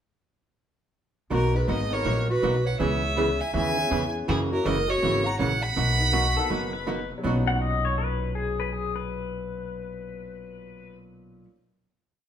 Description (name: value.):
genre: country, western swing.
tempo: 162 BPM.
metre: 4/4.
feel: swing 64% on 8ths.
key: B major.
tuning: A4 = 439 Hz.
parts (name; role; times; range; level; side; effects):
clear fiddle; melody; 1.3-6.9 s; G#4 to B5; -27 LUFS; right 1 dB; none.
mellow clarinet; second line; 1.3-6.9 s; E4 to F#5; -31 LUFS; right 2 dB; none.
archtop guitar, miked and amplified; accompaniment; 1.3-11.5 s; B2 to G#4; -30 LUFS; right 2 dB; none.
upright bass; bass; 1.3-11.4 s; F#1 to F#2; -28 LUFS; left 1 dB; none.
warm upright piano; accompaniment; 1.5-11.6 s; A#2 to A#4; -36 LUFS; left 2 dB; none.
pedal steel guitar; second line; 6.1-11.0 s; F#4 to F#5; -30 LUFS; left 5 dB; none.
room: wet stone room reverb, RT60 1.1 s.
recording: band playing live in one room.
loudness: -23 LUFS.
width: side -9 dB against mid.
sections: 1.3-7.2 A section; 7.2-10.2 final chord.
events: none.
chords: 1.3 Bmaj7; 2.8 C#m7; 4.3 F#7; 5.8 Bmaj7.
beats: | 1.31 1.68 2.05 2.42 | 2.79 3.17 3.54 3.91 | 4.28 4.65 5.02 5.39 | 5.76 6.13 6.50 6.87 | 7.24 7.61 7.99 8.36 | 8.73 9.10 9.47 9.84.